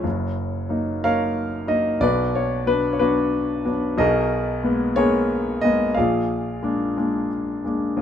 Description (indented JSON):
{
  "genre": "classical, lyrical solo piano",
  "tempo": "60 BPM (dotted quarters)",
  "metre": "6/8",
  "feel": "rubato",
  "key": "F# major",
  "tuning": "A4 = 439 Hz",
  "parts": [
    { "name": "warm grand piano", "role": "solo", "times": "0.0-8.0 s", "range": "D#1 to E#5", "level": "-20 LUFS", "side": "left 1 dB", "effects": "none" }
  ],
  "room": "light reverb",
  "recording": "minimal, uncompressed stereo recording",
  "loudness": "-19 LUFS",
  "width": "side -9 dB against mid",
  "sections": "0.0-8.0 A section",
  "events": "none",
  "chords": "0.0 F#6; 2.0 Bm; 4.0 G#madd9/B; 6.0 A#7",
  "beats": "| 0.05 1.05 | 2.03 3.01 | 3.99 4.98 | 5.97 6.97 | 7.98"
}